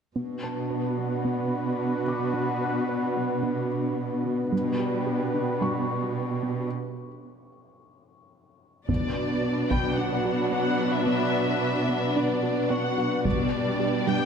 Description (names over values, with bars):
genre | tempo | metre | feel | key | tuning
cinematic, hybrid orchestral and electronic film score | 110 BPM | 4/4 | straight | B minor | A4 = 440 Hz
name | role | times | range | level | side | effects
sweeping resonant pad | sustained chords | 0.2-14.3 s | B3 to B4 | -29 LUFS | left 2 dB | lush chorus
soft round pluck | arpeggios | 0.2-14.2 s | G3 to B4 | -33 LUFS | right 3 dB | chorus, tape echo
warm studio cello section | bass | 0.2-14.3 s | B2 | -29 LUFS | right 3 dB | none
felt-muted upright piano | texture | 0.4-14.3 s | B4 to D6 | -40 LUFS | left 3 dB | tape echo
dark symphonic violin section | melody | 8.9-14.3 s | D5 to G5 | -31 LUFS | left 4 dB | none
warm symphonic viola section | accompaniment | 8.9-14.3 s | F#3 to D4 | -31 LUFS | right 2 dB | none
taiko ensemble | drums | 8.9-10.0, 13.3-14.3 s | none | -30 LUFS | left 1 dB | none
room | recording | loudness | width
moderate scoring stage reverb, RT60 1.7 s | none | -24 LUFS | side -6 dB against mid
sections
0.2-8.9 A section; 8.9-14.3 B section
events
break 6.7-8.9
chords
0.2 Bm; 4.5 G; 8.9 Bm; 13.2 G